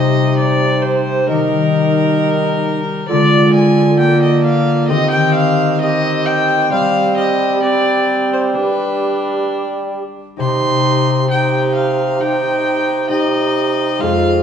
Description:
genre	classical, renaissance-style consort dance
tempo	66 BPM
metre	4/4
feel	straight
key	C minor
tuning	A4 = 439 Hz
part	dark violin	melody	0.0-14.4 s	Bb4 to C6	-18 LUFS	left 2 dB	none
part	mellow hollow tenor recorder	second line	0.0-14.4 s	Eb4 to Ab4	-21 LUFS	right 6 dB	none
part	concert harp	accompaniment	0.0-14.4 s	F2 to Ab4	-18 LUFS	left 6 dB	none
part	warm viola	accompaniment	0.0-14.4 s	G3 to F4	-22 LUFS	right 1 dB	none
part	warm bassoon	bass	0.0-14.4 s	F2 to G3	-19 LUFS	right 2 dB	none
room	wet stone room reverb, RT60 1.2 s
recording	heard from further back in the room, nothing above 10.6 kHz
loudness	-12 LUFS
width	side -8 dB against mid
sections	0.0-10.4 A section; 10.4-14.4 B section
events	none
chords	0.0 Cm; 1.3 Eb; 3.1 Ddim; 4.9 Cm/Eb; 6.7 Gsus4; 8.5 G; 10.4 Cm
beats	0.39 1.29 2.20 | 3.10 4.00 4.91 5.81 | 6.72 7.63 8.55 9.47 | 10.39 11.30 12.21 13.11 | 14.01

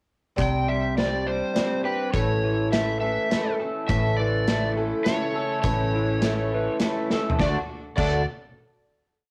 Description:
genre	folk rock and heartland rock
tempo	103 BPM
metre	3/4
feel	straight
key	unclear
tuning	A4 = 438 Hz
part	overdriven slide guitar	melody	0.4-8.2 s	B4 to G5	-31 LUFS	equal	cassette tape, plate reverb
part	picked swing-style acoustic guitar	accompaniment	0.4-8.2 s	A2 to A4	-32 LUFS	equal	cassette tape, plate reverb
part	electric guitar through a small old amp	riff	0.4-8.2 s	A2 to A4	-30 LUFS	equal	analog chorus, cassette tape
part	hollow-body short-scale picked electric bass	bass	0.4-8.2 s	A1 to D2	-30 LUFS	equal	none
part	loose indie drum kit	drums	0.4-8.1 s	crash cymbal, hi-hat, kick drum, snare drum, toms	-30 LUFS	equal	none
part	rich chamber string section	sustained chords	3.9-7.8 s	C#3 to A4	-42 LUFS	equal	none
room	moderate studio reverb, RT60 0.5 s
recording	home recording on cassette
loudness	-25 LUFS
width	mono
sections	0.4-7.4 pre-chorus; 7.4-9.1 final chord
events	drum fill 7.1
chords	0.4 Csus2; 2.1 A; 7.4 D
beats	| 0.37 0.96 1.54 | 2.12 2.71 3.29 | 3.88 4.46 5.04 | 5.63 6.21 6.80 | 7.38 7.97

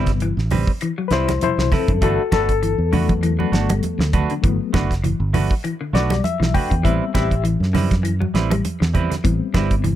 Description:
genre	afrobeat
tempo	100 BPM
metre	4/4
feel	swing 55% on 16ths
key	A dorian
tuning	A4 = 442 Hz
part	overdriven reed electric piano	accompaniment	0.0-10.0 s	B2 to G5	-23 LUFS	left 9 dB	fast tremolo, plate reverb
part	clean electric guitar	arpeggios	0.0-10.0 s	D3 to G3	-26 LUFS	left 5 dB	wide subtle chorus
part	semi-hollow electric guitar	stabs	0.0-9.7 s	G3 to B4	-27 LUFS	right 8 dB	plate reverb
part	fingered electric bass	bass	0.0-10.0 s	F#1 to F#2	-21 LUFS	right 1 dB	none
part	damped 70s drum kit	drums	0.1-10.0 s	hi-hat, kick drum, snare drum	-21 LUFS	right 1 dB	none
part	claves	percussion	0.5-9.7 s	none	-36 LUFS	left 13 dB	none
part	congas	percussion	0.5-10.0 s	none	-25 LUFS	right 4 dB	none
room	little or no reverb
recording	none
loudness	-17 LUFS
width	side -12 dB against mid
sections	0.0-10.0 A section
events	reed electric piano solo 0.0-10.0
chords	0.0 Am9; 2.0 Gmaj9; 6.8 Am9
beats	0.21 0.81 1.42 | 2.02 2.62 3.23 3.83 | 4.43 5.04 5.64 6.24 | 6.84 7.44 8.04 8.65 | 9.25 9.85

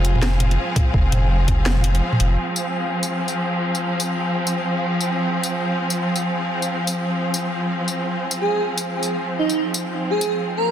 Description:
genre	half-time drum and bass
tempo	167 BPM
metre	4/4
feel	swing 60% on 16ths, half-time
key	F minor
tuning	A4 = 443 Hz
part	clear studio string section	sustained chords	0.0-10.7 s	F3 to F5	-22 LUFS	equal	sidechain pumping, low-pass filter
part	saturated sub bass	bass	0.0-2.4 s	F1	-18 LUFS	equal	none
part	drum and bass drum kit	drums	0.0-10.3 s	hi-hat, snare drum, tambourine, toms	-24 LUFS	equal	overdrive, small room ambience
part	backwards swelling texture	texture	0.0-2.4 s	Ab3 to F4	-35 LUFS	right 1 dB	none
part	electronic kick drum	drums	0.8-1.6 s	none	-18 LUFS	equal	overdrive, small room ambience
part	airy dreamy lead	melody	8.4-10.7 s	Eb4 to Bb4	-22 LUFS	right 2 dB	chorus, digital delay
room	light reverb, digital ambience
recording	dense, heavily limited modern master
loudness	-19 LUFS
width	side -10 dB against mid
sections	0.0-2.4 A section; 2.4-10.7 B section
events	kick drops out 2.0-2.4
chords	0.0 Fm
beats	0.22 0.58 | 0.94 1.30 1.66 2.02 | 2.38 2.74 3.10 3.46 | 3.82 4.18 4.54 4.89 | 5.25 5.61 5.97 6.33 | 6.69 7.05 7.41 7.77 | 8.13 8.49 8.85 9.21 | 9.56 9.92 10.28 10.64

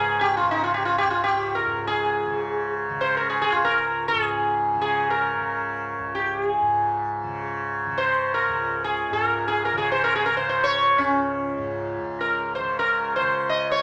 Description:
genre	indian classical, Hindustani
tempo	free time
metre	none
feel	none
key	unclear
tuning	A4 = 440 Hz
part	sitar	melody	0.0-13.8 s	Db4 to Eb5	-24 LUFS	equal	none
part	tanpura	drone	0.0-13.8 s	Db2 to Db3	-31 LUFS	equal	none
room	moderate large studio reverb, RT60 1.1 s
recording	none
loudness	-23 LUFS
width	mono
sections	0.0-12.0 A section; 12.0-13.8 A section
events	none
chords	none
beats	free time

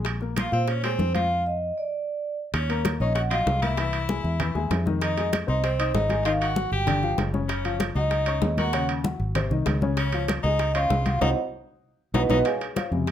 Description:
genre	Afro-Cuban jazz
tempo	194 BPM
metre	4/4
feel	straight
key	unclear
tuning	A4 = 440 Hz
part	warm upright piano	accompaniment	0.0-13.1 s	C3 to Eb6	-30 LUFS	left 6 dB	none
part	fingered electric bass	bass	0.0-13.1 s	Gb1 to Bb2	-27 LUFS	equal	none
part	bongos	percussion	0.0-13.1 s	none	-36 LUFS	left 9 dB	none
part	congas	percussion	0.1-13.1 s	none	-31 LUFS	left 1 dB	none
part	timbales	percussion	0.1-13.1 s	none	-33 LUFS	right 6 dB	none
part	vibraphone with medium mallets	melody	0.4-12.4 s	B4 to G5	-28 LUFS	right 3 dB	none
part	edgy tenor saxophone	second line	0.4-12.4 s	C4 to G4	-32 LUFS	left 4 dB	none
room	light reverb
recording	none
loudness	-22 LUFS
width	side -10 dB against mid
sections	0.0-2.5 A section; 2.5-12.5 B section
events	stop 1.3-2.5; drum fill 11.2-12.5; band accent 11.2-12.5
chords	0.1 Bbsus2; 1.3 Dm/F; 1.9 N.C.; 2.5 Ebm7; 3.8 Caug; 5.0 Fm7; 6.3 Ab5; 6.9 G5; 7.5 Gbmaj7; 8.7 Ebm7; 9.4 Ab; 10.0 Db; 11.2 Cdim; 11.8 B; 12.5 Dbmaj7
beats	| 0.06 0.37 0.68 0.99 | 1.30 1.61 1.92 2.23 | 2.54 2.85 3.16 3.47 | 3.78 4.09 4.40 4.71 | 5.02 5.33 5.64 5.95 | 6.26 6.57 6.88 7.18 | 7.50 7.80 8.11 8.42 | 8.73 9.04 9.35 9.66 | 9.97 10.28 10.59 10.90 | 11.21 11.52 11.84 12.14 | 12.46 12.77 13.08

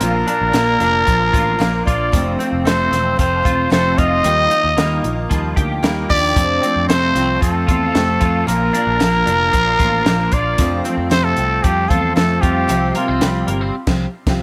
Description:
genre	jangly indie pop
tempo	114 BPM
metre	4/4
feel	straight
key	F major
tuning	A4 = 440 Hz
part	growling trumpet	melody	0.0-13.4 s	F4 to Eb5	-20 LUFS	equal	none
part	vibraphone with soft mallets	second line	0.0-13.5 s	F3 to Eb4	-31 LUFS	equal	none
part	picked steel-string acoustic guitar	accompaniment	0.0-14.4 s	F2 to G4	-24 LUFS	equal	none
part	twelve-string electric guitar	arpeggios	0.0-13.7 s	F2 to G4	-26 LUFS	equal	ensemble chorus
part	vintage muted picked electric bass	bass	0.0-14.4 s	E1 to F2	-24 LUFS	equal	none
part	compact cocktail drum kit	drums	0.0-14.4 s	crash cymbal, hi-hat, kick drum, snare drum	-21 LUFS	equal	none
room	light reverb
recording	none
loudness	-16 LUFS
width	mono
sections	0.0-14.4 A section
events	band accent 13.7-14.4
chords	0.0 Bb; 2.1 F; 4.2 Ebadd9; 6.4 F; 8.5 Bb; 10.6 F; 12.7 Csus4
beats	| 0.01 0.54 1.07 1.60 | 2.13 2.66 3.19 3.72 | 4.25 4.78 5.30 5.83 | 6.36 6.89 7.42 7.95 | 8.47 9.00 9.53 10.06 | 10.58 11.11 11.64 12.16 | 12.69 13.22 13.74 14.27

